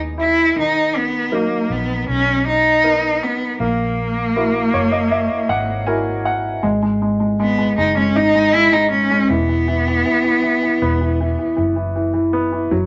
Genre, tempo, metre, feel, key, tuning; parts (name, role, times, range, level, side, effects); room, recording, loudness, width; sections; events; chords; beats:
pop; 79 BPM; 4/4; straight; A4 = 440 Hz
warm baby grand piano; accompaniment; 0.0-12.9 s; D#3 to G#5; -22 LUFS; equal
vintage muted fingered electric bass; bass; 0.0-12.9 s; E1 to D#2; -26 LUFS; equal
rich cello; melody; 0.2-11.6 s; A#3 to E4; -20 LUFS; equal
moderate studio reverb, RT60 0.8 s; nothing above 8.0 kHz; -17 LUFS; mono
0.0-6.6 A section; 6.6-12.9 B section
grand piano fill 4.4-6.6
0.0 Emaj7; 0.6 Bmaj7; 3.6 F#7; 6.6 G#5; 9.3 Esus2
| 0.56 1.32 2.08 2.84 | 3.60 4.36 5.12 5.88 | 6.64 7.40 8.16 8.92 | 9.68 10.44 11.20 11.96 | 12.72